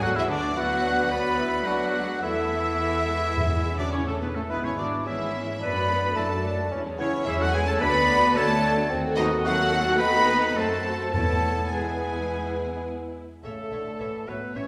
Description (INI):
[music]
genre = quick classical-period movement for symphony orchestra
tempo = 108 BPM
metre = 4/4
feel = rubato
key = unclear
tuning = A4 = 441 Hz
[part]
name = rich studio violin section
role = melody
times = 0.0-14.6 s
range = A4 to B5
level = -33 LUFS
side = equal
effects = none
[part]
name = clear clarinet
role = second line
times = 0.0-14.7 s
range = A3 to C#5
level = -36 LUFS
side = equal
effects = none
[part]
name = clear oboe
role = second line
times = 0.0-14.7 s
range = A4 to B5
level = -33 LUFS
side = equal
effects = none
[part]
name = hollow concert flute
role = second line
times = 0.0-12.9 s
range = C#4 to D#5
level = -36 LUFS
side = equal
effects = none
[part]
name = rich chamber violin section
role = second line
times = 0.0-14.7 s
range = A3 to C#5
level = -38 LUFS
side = equal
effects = none
[part]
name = rich studio viola section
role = accompaniment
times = 0.0-14.6 s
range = E3 to C#5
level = -37 LUFS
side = equal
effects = none
[part]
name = warm bassoon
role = accompaniment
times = 0.0-14.7 s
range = C#3 to F#4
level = -36 LUFS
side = equal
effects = none
[part]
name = mellow French horn section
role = sustained chords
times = 0.0-14.7 s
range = G#3 to B4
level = -36 LUFS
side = equal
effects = none
[part]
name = clear trumpet section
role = stabs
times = 0.0-12.8 s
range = A4 to B5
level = -33 LUFS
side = equal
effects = none
[part]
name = clear studio cello section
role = bass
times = 0.0-14.6 s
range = A2 to B3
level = -37 LUFS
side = equal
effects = none
[part]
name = rich studio double bass section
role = bass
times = 0.0-14.6 s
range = G#1 to F#2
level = -35 LUFS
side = equal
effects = none
[part]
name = timpani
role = percussion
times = 3.4-4.2, 11.1-12.0 s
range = E2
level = -32 LUFS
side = equal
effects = none
[sound]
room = wet recital hall reverb, RT60 1.4 s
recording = recorded in a church or concert hall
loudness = -25 LUFS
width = mono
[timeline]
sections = 0.0-13.4 A section; 13.4-14.7 B section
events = none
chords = 0.0 Bm/D; 2.2 Esus4; 3.4 E; 4.5 E/G#; 5.6 D/F#; 6.7 C#m/E; 7.8 Bm/D; 8.9 D#dim7; 11.1 E; 13.4 A